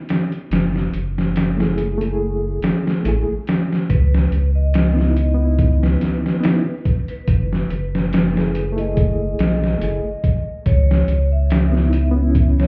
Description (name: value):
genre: trip hop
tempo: 71 BPM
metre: 4/4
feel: swing 55% on 16ths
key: unclear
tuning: A4 = 440 Hz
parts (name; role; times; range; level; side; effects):
- trip hop sampler-style drum kit; drums; 0.1-12.7 s; hi-hat, kick drum, snare drum; -21 LUFS; equal; overdrive
- warm sub bass; bass; 0.5-12.7 s; F#1 to C#2; -20 LUFS; equal; none
- reed electric piano; accompaniment; 1.6-12.7 s; A3 to G#4; -26 LUFS; equal; fast tremolo
- vibraphone with medium mallets; melody; 3.9-12.7 s; B4 to E5; -31 LUFS; equal; dub echo
room: light reverb, digital ambience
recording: heard muffled through a wall, club reverb, vinyl crackle, EQ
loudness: -18 LUFS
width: mono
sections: 0.0-12.7 A section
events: none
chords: 0.0 N.C.; 0.5 F#m7; 3.9 C#m7; 7.3 F#m7; 10.7 C#m7